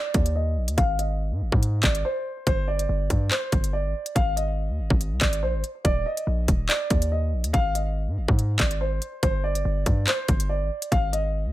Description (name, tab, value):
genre	hip hop, drill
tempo	142 BPM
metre	4/4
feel	half-time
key	unclear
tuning	A4 = 442 Hz
part	dark concert grand piano	melody	0.0-11.5 s	C5 to F5	-29 LUFS	right 1 dB	low-pass filter
part	hard-hitting 808-style bass	bass	0.1-11.5 s	Eb1 to Ab2	-25 LUFS	equal	none
part	drill drum kit	drums	0.1-11.2 s	handclaps, hi-hat, kick drum	-23 LUFS	equal	none
room	digital ambience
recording	none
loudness	-22 LUFS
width	side -15 dB against mid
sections	0.0-11.5 A section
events	filter sweep on grand piano 0.0-2.5; break 2.0-2.5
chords	0.0 Eb5; 0.8 Ab; 2.5 G5; 4.2 Ab5; 5.8 Eb5; 7.5 Ab; 9.2 G5; 10.9 Ab5